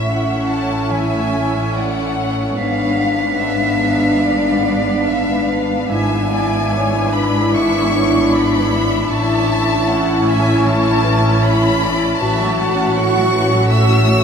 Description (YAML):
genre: classical, slow romantic movement for symphony orchestra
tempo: 71-81 BPM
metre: 4/4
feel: rubato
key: A major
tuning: A4 = 443 Hz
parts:
  - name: rich chamber violin section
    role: melody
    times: 0.0-14.2 s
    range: D5 to E6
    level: -22 LUFS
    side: left 2 dB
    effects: none
  - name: mellow clarinet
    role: second line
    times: 0.0-14.2 s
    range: C#4 to F#4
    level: -23 LUFS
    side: left 3 dB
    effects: none
  - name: mellow hollow concert flute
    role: second line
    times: 0.0-14.2 s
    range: C#6 to B6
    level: -25 LUFS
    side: right 3 dB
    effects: none
  - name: rich chamber violin section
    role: second line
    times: 0.0-14.2 s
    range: B4 to F#5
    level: -25 LUFS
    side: equal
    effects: none
  - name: rich chamber viola section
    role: accompaniment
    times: 0.0-14.2 s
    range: E3 to F#4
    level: -22 LUFS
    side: equal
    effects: none
  - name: dark French horn section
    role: sustained chords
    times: 0.0-14.2 s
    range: A3 to F#4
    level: -22 LUFS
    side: right 1 dB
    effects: none
  - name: concert harp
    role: arpeggios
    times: 0.0-14.2 s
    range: G#2 to D5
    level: -24 LUFS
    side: equal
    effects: none
  - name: rich chamber double bass section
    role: bass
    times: 0.0-14.2 s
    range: G#1 to A1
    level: -22 LUFS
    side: equal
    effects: none
  - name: warm chamber cello section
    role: bass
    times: 0.0-14.2 s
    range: G#2 to A2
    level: -24 LUFS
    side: right 1 dB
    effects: none
room: wet huge ambient reverb, RT60 7.6 s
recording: in a vast, echoing space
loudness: -14 LUFS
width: side -7 dB against mid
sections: 0.0-14.2 A section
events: none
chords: 0.0 A; 2.6 G#dim7; 5.9 E7/G#; 9.1 A; 12.2 F#m7/A